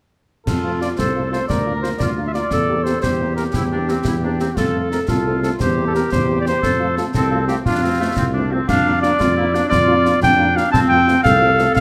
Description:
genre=military-style march for wind band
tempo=117 BPM (dotted quarters)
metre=6/8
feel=straight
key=F major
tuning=A4 = 440 Hz
part: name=mellow cornet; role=melody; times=0.5-11.8 s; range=F4 to A5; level=-22 LUFS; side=equal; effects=none
part: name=warm woodwind section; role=second line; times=0.5-11.8 s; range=A3 to Bb4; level=-25 LUFS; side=equal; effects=none
part: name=mellow tuba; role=bass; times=0.5-11.8 s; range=C2 to F2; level=-24 LUFS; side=equal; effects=none
part: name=concert snare drum, clash cymbals and concert bass drum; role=drums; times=0.5-11.8 s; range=none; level=-26 LUFS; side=equal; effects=none
part: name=dark French horn section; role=accompaniment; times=0.6-11.6 s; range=A3 to A4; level=-30 LUFS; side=equal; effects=none
room=moderate scoring stage reverb, RT60 1.5 s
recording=none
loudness=-18 LUFS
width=mono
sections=0.5-11.8 A section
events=none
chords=0.5 F; 1.5 Bb/D; 2.5 C7/E; 4.6 F; 5.6 C7/E; 6.6 F; 8.7 Bb/F; 10.7 F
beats=| 0.47 0.98 | 1.49 2.01 | 2.52 3.03 | 3.55 4.06 | 4.57 5.09 | 5.60 6.11 | 6.63 7.14 | 7.66 8.17 | 8.68 9.20 | 9.71 10.22 | 10.74 11.25 | 11.76

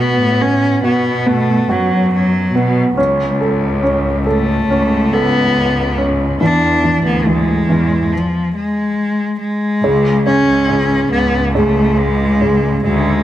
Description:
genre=pop ballad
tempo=70 BPM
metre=4/4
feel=straight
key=unclear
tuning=A4 = 440 Hz
part: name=warm cello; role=melody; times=0.0-13.2 s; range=E#3 to D4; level=-16 LUFS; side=equal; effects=none
part: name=warm concert grand piano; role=accompaniment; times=0.0-13.2 s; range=C#3 to A4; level=-17 LUFS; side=right 1 dB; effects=none
part: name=rich studio cello section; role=bass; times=0.0-13.2 s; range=C#2 to B2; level=-18 LUFS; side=equal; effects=none
room=light reverb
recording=none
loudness=-12 LUFS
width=side -12 dB against mid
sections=0.0-9.8 A section; 9.8-13.2 B section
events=stop 8.1-9.8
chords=0.0 B5; 3.0 Aadd9/C#; 6.4 E7; 8.1 N.C.; 9.8 C#5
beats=0.41 1.27 2.12 | 2.98 3.84 4.70 5.55 | 6.41 7.27 8.12 8.98 | 9.84 10.70 11.55 12.41

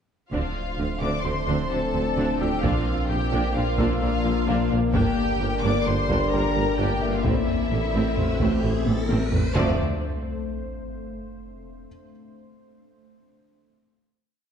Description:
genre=cinematic, hybrid orchestral and electronic film score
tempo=130 BPM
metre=5/4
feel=straight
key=D minor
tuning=A4 = 440 Hz
part: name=rich symphonic violin section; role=melody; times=0.3-9.8 s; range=D5 to D6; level=-32 LUFS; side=left 3 dB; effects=none
part: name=rich studio violin section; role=second line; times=0.3-9.8 s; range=D4 to D5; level=-32 LUFS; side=left 4 dB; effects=none
part: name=warm symphonic viola section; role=accompaniment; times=0.3-9.8 s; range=E3 to D4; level=-31 LUFS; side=equal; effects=none
part: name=dark French horn section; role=sustained chords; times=0.3-9.7 s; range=C4 to C5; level=-32 LUFS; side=left 4 dB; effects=none
part: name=deep dark ambient pad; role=sustained chords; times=1.3-9.8 s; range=A3 to E5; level=-30 LUFS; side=left 4 dB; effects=chorus, built-in reverb
part: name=warm trombone section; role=sustained chords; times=0.3-9.7 s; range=D3 to Bb3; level=-34 LUFS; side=right 3 dB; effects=none
part: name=clear tuba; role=bass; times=0.3-9.7 s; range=G1 to D2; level=-33 LUFS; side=right 4 dB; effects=none
part: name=pure sine sub bass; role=bass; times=0.3-9.8 s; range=D1 to Bb1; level=-30 LUFS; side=equal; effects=none
part: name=rich chamber double bass section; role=bass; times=0.3-9.8 s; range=G1 to D2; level=-31 LUFS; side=right 4 dB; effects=none
part: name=rich studio cello section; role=bass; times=0.3-9.8 s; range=G2 to D3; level=-32 LUFS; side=right 3 dB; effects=none
part: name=solo taiko drums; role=drums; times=0.3-10.4 s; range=none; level=-29 LUFS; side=equal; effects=none
part: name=felt-muted upright piano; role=texture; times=1.2-9.6 s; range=F4 to E6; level=-39 LUFS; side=left 3 dB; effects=none
part: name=riser and sub drop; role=sound effects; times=7.0-11.9 s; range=none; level=-34 LUFS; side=equal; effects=none
room=wet scoring stage reverb, RT60 1.6 s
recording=dark, warm production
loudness=-21 LUFS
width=side -7 dB against mid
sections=0.3-9.6 theme; 9.6-11.9 final chord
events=riser 7.0-9.6; drum fill 8.9-9.6; impact 9.6-11.9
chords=0.3 Dm7; 2.6 Bb; 4.9 Gm; 7.2 Am; 9.6 Dm7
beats=| 0.32 0.79 1.25 1.71 2.17 | 2.63 3.09 3.55 4.01 4.48 | 4.94 5.40 5.86 6.32 6.79 | 7.25 7.71 8.17 8.63 9.09 | 9.55 10.02 10.48 10.94 11.40

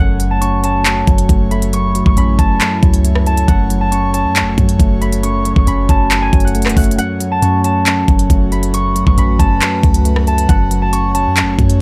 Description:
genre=hip hop, trap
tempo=137 BPM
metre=4/4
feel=half-time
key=F# minor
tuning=A4 = 440 Hz
part: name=concert harp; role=melody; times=0.0-11.8 s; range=F#5 to C#6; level=-22 LUFS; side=equal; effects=low-pass filter
part: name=mellow tine electric piano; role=accompaniment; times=0.0-11.8 s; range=F#2 to C#4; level=-20 LUFS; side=equal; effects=low-pass filter
part: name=airy breathy pad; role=sustained chords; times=0.0-11.8 s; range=A3 to C#5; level=-27 LUFS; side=equal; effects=chorus
part: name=clean 808-style bass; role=bass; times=0.0-11.8 s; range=E1 to F#2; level=-18 LUFS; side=equal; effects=none
part: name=trap drum kit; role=drums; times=0.2-11.8 s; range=handclaps, hi-hat, kick drum, rim click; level=-17 LUFS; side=equal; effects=overdrive
room=light reverb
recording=none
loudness=-13 LUFS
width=mono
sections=0.0-11.8 A section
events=break 7.0-7.4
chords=0.0 F#m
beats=0.42 0.85 1.29 | 1.73 2.17 2.61 3.04 | 3.48 3.92 4.36 4.80 | 5.24 5.67 6.11 6.55 | 6.99 7.42 7.86 8.30 | 8.74 9.18 9.61 10.05 | 10.49 10.93 11.37 11.80

